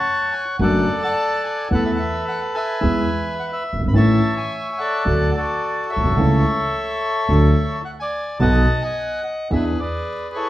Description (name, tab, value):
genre	tango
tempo	108 BPM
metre	4/4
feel	rubato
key	A major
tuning	A4 = 441 Hz
part	bandoneon	melody	0.0-10.5 s	E4 to B5	-21 LUFS	left 1 dB	none
part	warm concert grand piano	accompaniment	0.6-9.7 s	F#1 to A4	-20 LUFS	equal	none
part	upright bass	bass	0.6-9.7 s	F#1 to E2	-21 LUFS	right 1 dB	none
room	wet studio reverb, RT60 0.9 s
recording	heard from further back in the room, vinyl crackle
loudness	-17 LUFS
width	side -15 dB against mid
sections	0.0-10.5 A section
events	none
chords	0.0 F#m; 0.6 D/F#; 1.7 Esus4; 2.8 E; 3.9 A; 5.1 D; 6.2 A/C#; 7.3 D; 8.4 B7; 9.5 E7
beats	0.04 0.60 1.15 | 1.70 2.26 2.82 3.38 | 3.94 4.50 5.06 5.62 | 6.18 6.74 7.29 7.85 | 8.40 8.96 9.51 10.06